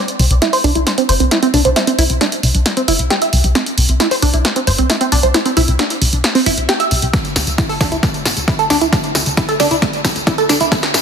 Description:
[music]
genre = uplifting trance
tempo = 134 BPM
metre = 4/4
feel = straight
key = unclear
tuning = A4 = 439 Hz
[part]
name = punchy analog drum machine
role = drums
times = 0.1-11.0 s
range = hi-hat, snare drum, tambourine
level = -17 LUFS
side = equal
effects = overdrive, high-pass filter on perc, small room ambience, high-pass filter on snare, high-pass filter on hats
[part]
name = plucky analog bass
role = bass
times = 0.2-11.0 s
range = D1 to D2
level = -16 LUFS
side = left 1 dB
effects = sidechain pumping
[part]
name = tight sequenced synth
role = arpeggios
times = 0.4-10.7 s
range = A3 to E5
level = -16 LUFS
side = right 2 dB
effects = chorus, sidechain pumping, dub echo
[part]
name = electronic kick drum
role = drums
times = 7.1-10.8 s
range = none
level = -18 LUFS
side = equal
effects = overdrive, small room ambience
[sound]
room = moderate lush hall reverb, RT60 1.5 s, digital ambience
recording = dense, heavily limited modern master, high-pass filter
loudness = -12 LUFS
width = side -7 dB against mid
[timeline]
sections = 0.0-11.0 A section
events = build-up 0.0-11.0; drum fill 0.0-11.0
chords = 0.0 N.C.; 7.1 Dsus2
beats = 0.42 0.87 1.31 | 1.76 2.21 2.66 3.10 | 3.55 4.00 4.45 4.90 | 5.34 5.79 6.24 6.69 | 7.13 7.58 8.03 8.48 | 8.93 9.37 9.82 10.27 | 10.72

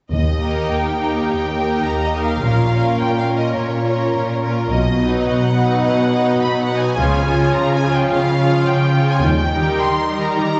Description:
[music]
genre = cinematic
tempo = 106 BPM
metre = 4/4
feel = straight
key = Eb mixolydian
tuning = A4 = 440 Hz
[part]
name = rich symphonic violin section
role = melody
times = 0.1-10.6 s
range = Db5 to C6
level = -25 LUFS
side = equal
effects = none
[part]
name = mellow French horn section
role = sustained chords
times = 0.1-10.6 s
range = G3 to G4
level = -26 LUFS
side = equal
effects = none
[part]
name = clear symphonic double bass section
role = bass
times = 0.1-9.7 s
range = Bb1 to Eb2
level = -24 LUFS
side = equal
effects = none
[part]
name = warm symphonic cello section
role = bass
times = 0.1-10.6 s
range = Eb2 to Eb3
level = -23 LUFS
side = equal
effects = none
[part]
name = timpani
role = percussion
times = 0.1-0.9 s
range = Eb3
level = -28 LUFS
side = equal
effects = none
[part]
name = warm symphonic violin section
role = second line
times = 0.4-10.6 s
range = F4 to D#5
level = -26 LUFS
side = equal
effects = none
[part]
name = rich symphonic viola section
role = accompaniment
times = 0.4-10.6 s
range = F3 to F4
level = -26 LUFS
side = equal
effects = none
[sound]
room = wet scoring stage reverb, RT60 1.7 s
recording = heard from further back in the room, nothing above 7.9 kHz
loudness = -17 LUFS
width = mono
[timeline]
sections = 0.1-10.6 A section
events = none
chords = 0.1 Eb; 2.4 Bbm; 4.7 B; 7.0 Db; 9.2 Eb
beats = | 0.13 0.70 1.27 1.85 | 2.42 3.00 3.57 4.14 | 4.71 5.28 5.84 6.41 | 6.98 7.54 8.11 8.67 | 9.24 9.80 10.36

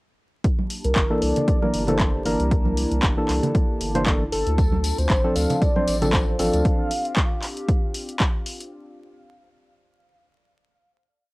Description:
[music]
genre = deep house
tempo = 116 BPM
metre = 4/4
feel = swing 55% on 16ths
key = D minor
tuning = A4 = 441 Hz
[part]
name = hollow soft pad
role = sustained chords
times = 0.4-8.7 s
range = Bb3 to A5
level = -34 LUFS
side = equal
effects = chorus, sidechain pumping, cassette tape
[part]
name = electronic kick drum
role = drums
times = 0.4-8.3 s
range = none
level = -21 LUFS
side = equal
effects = overdrive, cassette tape
[part]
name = punchy analog drum machine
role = drums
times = 0.4-8.7 s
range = handclaps, hi-hat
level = -28 LUFS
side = equal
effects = overdrive, cassette tape
[part]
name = congas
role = percussion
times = 0.6-6.1 s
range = none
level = -29 LUFS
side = right 3 dB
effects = none
[part]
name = warm velvety synth lead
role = melody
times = 0.8-7.9 s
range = A4 to F5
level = -29 LUFS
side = equal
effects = chorus, cassette tape, analog delay
[part]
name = round analog bass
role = bass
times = 0.8-6.6 s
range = G1 to D2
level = -25 LUFS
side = equal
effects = sidechain pumping
[part]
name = percussive organ stab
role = stabs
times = 1.1-6.9 s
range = E3 to C5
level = -24 LUFS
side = equal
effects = chorus, sidechain pumping, cassette tape
[part]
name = tambourine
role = percussion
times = 4.6-6.6 s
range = none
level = -36 LUFS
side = left 6 dB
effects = none
[sound]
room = light reverb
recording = home recording on cassette, vinyl crackle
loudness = -19 LUFS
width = side -22 dB against mid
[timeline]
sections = 0.4-8.7 groove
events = none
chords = 0.4 C13; 4.6 Dm7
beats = | 0.44 0.96 1.48 2.00 | 2.51 3.03 3.55 4.07 | 4.58 5.10 5.62 6.13 | 6.65 7.17 7.69 8.20

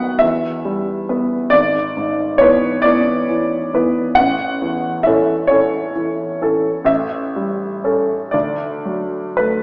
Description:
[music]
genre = classical, romantic nocturne for solo piano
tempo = 36-46 BPM (dotted quarters)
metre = 6/8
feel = rubato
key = A major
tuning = A4 = 441 Hz
[part]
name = warm upright piano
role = solo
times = 0.0-9.6 s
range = G#1 to G5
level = -17 LUFS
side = equal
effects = none
[sound]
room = wet recital hall reverb, RT60 1.5 s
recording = small speaker sound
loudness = -17 LUFS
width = mono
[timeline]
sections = 0.0-9.6 A section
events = none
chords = 0.2 Em; 1.5 E7/G#; 4.2 A; 6.9 A7; 8.3 D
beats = 0.22 | 1.53 2.84 | 4.17 5.50 | 6.88 8.34

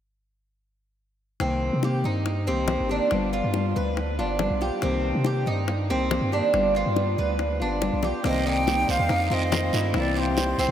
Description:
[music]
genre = latin, Cuban son and guajira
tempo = 140 BPM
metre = 4/4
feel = straight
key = C minor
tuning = A4 = 440 Hz
[part]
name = nylon-string guitar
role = accompaniment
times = 1.4-10.7 s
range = C3 to G4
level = -28 LUFS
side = left 3 dB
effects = none
[part]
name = Cuban tres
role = arpeggios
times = 1.4-10.7 s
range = C4 to C5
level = -27 LUFS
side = right 2 dB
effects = none
[part]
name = punchy sub bass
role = bass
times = 1.4-10.7 s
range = G1 to C3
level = -27 LUFS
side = right 1 dB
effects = none
[part]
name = bongos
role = percussion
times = 1.4-10.7 s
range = none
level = -32 LUFS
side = left 6 dB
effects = none
[part]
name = guiro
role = percussion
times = 8.2-10.7 s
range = none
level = -34 LUFS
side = right 5 dB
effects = none
[part]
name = breathy jazz flute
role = melody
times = 8.3-10.7 s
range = C5 to G5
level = -26 LUFS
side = right 1 dB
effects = none
[sound]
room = wet huge ambient reverb, RT60 7.8 s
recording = in a vast, echoing space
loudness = -22 LUFS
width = side -10 dB against mid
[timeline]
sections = 1.4-8.2 A section; 8.2-10.7 B section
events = drum fill 7.8-8.2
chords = 1.4 Cm7; 3.1 G7; 4.8 Cm7; 6.5 G7; 8.2 Cm7; 9.1 F7; 10.0 C7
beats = | 1.41 1.84 2.27 2.69 | 3.12 3.55 3.98 4.40 | 4.83 5.26 5.69 6.11 | 6.54 6.97 7.39 7.82 | 8.25 8.67 9.10 9.53 | 9.95 10.38

